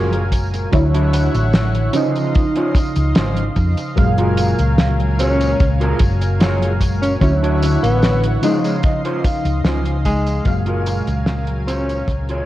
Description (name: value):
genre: vaporwave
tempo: 74 BPM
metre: 4/4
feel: straight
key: Gb lydian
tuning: A4 = 440 Hz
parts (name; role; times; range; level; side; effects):
- warbly lo-fi synth keys; accompaniment; 0.0-12.5 s; Bb2 to F5; -21 LUFS; equal; analog chorus, vintage 12-bit sampler grit, tape echo
- lush unison pad; sustained chords; 0.0-12.5 s; D3 to C6; -28 LUFS; equal; chorus
- mellow electric guitar; riff; 0.0-12.5 s; Db4 to Ab5; -25 LUFS; right 1 dB; lush chorus, tape echo
- hollow-body short-scale fingered electric bass; bass; 0.0-12.4 s; Gb1 to F2; -18 LUFS; equal; none
- damped 70s drum kit; drums; 0.1-12.4 s; hi-hat, snare drum, tambourine; -22 LUFS; equal; studio reverb
- kick drum; drums; 0.3-12.2 s; none; -17 LUFS; equal; studio reverb
- mellow alto saxophone; melody; 5.2-12.2 s; Ab3 to Db4; -23 LUFS; equal; tape echo
room: moderate scoring stage reverb, RT60 1.8 s, small room ambience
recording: worn, warbling old tape, cassette tape, warbly pitch drift, faint mains hum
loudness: -14 LUFS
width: side -15 dB against mid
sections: 0.0-12.5 A section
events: clean electric guitar fill 8.0-10.5; fade-out 8.3-12.5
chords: 0.0 Gbmaj9; 0.7 Dmaj9; 1.9 Dbmaj9; 4.0 Gbmaj9; 7.2 Dmaj9; 8.4 Dbmaj9; 10.5 Gbmaj9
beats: | 0.73 1.54 2.35 3.16 | 3.97 4.78 5.59 6.41 | 7.22 8.03 8.84 9.65 | 10.46 11.27 12.08